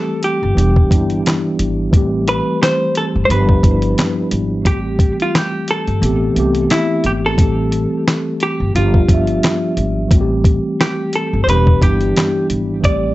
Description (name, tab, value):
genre	lo-fi hip hop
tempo	88 BPM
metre	4/4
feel	swing 58% on 16ths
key	A minor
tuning	A4 = 439 Hz
part	vintage hollow-body jazz guitar	melody	0.0-13.1 s	E4 to D5	-19 LUFS	equal	plate reverb
part	mellow tine electric piano	accompaniment	0.0-13.1 s	E3 to E5	-18 LUFS	equal	medium stereo tremolo, cassette tape
part	dusty soul sampler-style drum kit	drums	0.2-13.0 s	handclaps, hi-hat, kick drum, snare drum	-14 LUFS	equal	none
part	upright bass	bass	0.4-13.1 s	E1 to C2	-19 LUFS	equal	none
room	moderate studio reverb, RT60 0.6 s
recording	nothing above 8.0 kHz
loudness	-13 LUFS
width	side -17 dB against mid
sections	0.0-7.4 A section; 7.4-13.1 A section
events	kick muted 6.0-7.4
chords	0.0 Am7; 0.6 Em7; 1.9 Am7; 3.3 G7; 4.7 Am7; 6.0 Am9; 7.4 Am7; 8.7 G7; 10.1 Am7; 11.5 Em7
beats	0.56 1.25 | 1.93 2.61 3.29 3.97 | 4.66 5.34 6.02 6.70 | 7.38 8.06 8.75 9.43 | 10.11 10.79 11.47 12.15 | 12.84